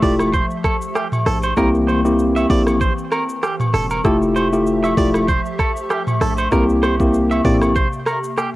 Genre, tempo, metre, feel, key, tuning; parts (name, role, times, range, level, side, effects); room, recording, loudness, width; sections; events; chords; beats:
afrobeats; 97 BPM; 4/4; swing 55% on 16ths; F major; A4 = 440 Hz
tine electric piano; accompaniment; 0.0-7.7 s; A3 to G4; -16 LUFS; left 1 dB; cassette tape
hollow soft pad; sustained chords; 0.0-8.6 s; C3 to E5; -27 LUFS; equal; ensemble chorus, cassette tape
clean electric guitar; riff; 0.0-8.5 s; G4 to E5; -24 LUFS; right 4 dB; cassette tape, tape echo
hard-hitting 808-style bass; bass; 0.0-7.9 s; E1 to C2; -22 LUFS; equal
afro-pop drum kit; drums; 0.0-8.5 s; hi-hat, kick drum, rim click, shaker, toms; -21 LUFS; equal; cassette tape
agogo bells and woodblock; percussion; 0.2-8.5 s; -26 LUFS; left 2 dB
light reverb, digital ambience; home recording on cassette; -15 LUFS; side -17 dB against mid
0.0-8.6 A section
0.0 Fmaj9; 1.6 C7; 4.0 Fmaj9; 6.5 C7
0.33 0.95 | 1.57 2.19 2.81 3.43 | 4.05 4.66 5.28 5.90 | 6.52 7.14 7.76 8.38